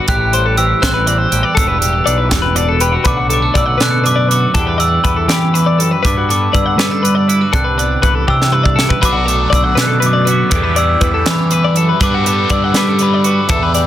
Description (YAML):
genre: math rock and midwest emo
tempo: 80 BPM (dotted quarters)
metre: 6/8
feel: straight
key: E minor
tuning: A4 = 441 Hz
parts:
  - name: twelve-string electric guitar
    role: accompaniment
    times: 0.0-13.9 s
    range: E2 to G4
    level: -22 LUFS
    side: right 5 dB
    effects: wide subtle chorus
  - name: twelve-string electric guitar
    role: arpeggios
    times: 0.0-13.9 s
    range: F#4 to F#5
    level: -18 LUFS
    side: left 8 dB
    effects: spring reverb, digital delay
  - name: glockenspiel with hard plastic mallets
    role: melody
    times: 0.1-13.9 s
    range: B5 to F#6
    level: -18 LUFS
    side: right 1 dB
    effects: digital delay
  - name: growling picked electric bass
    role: bass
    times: 0.1-13.9 s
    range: E1 to G3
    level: -16 LUFS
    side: equal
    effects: overdrive
  - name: crisp fusion drum kit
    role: drums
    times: 0.1-13.9 s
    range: hi-hat, kick drum, snare drum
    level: -18 LUFS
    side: right 1 dB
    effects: none
  - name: cranked stack guitar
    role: riff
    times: 9.0-13.9 s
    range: B2 to G4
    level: -20 LUFS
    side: equal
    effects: overdrive, phaser
room: little or no reverb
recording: dense, heavily limited modern master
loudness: -11 LUFS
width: side -12 dB against mid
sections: 0.0-3.1 A section; 3.1-13.9 B section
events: drum fill 8.3-9.0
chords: 0.1 Am7; 1.6 Em7; 3.1 Bm7; 4.6 Em7; 6.0 Gmaj7; 7.5 Cmaj9; 9.0 Bm7; 10.5 Em7; 12.0 Gmaj7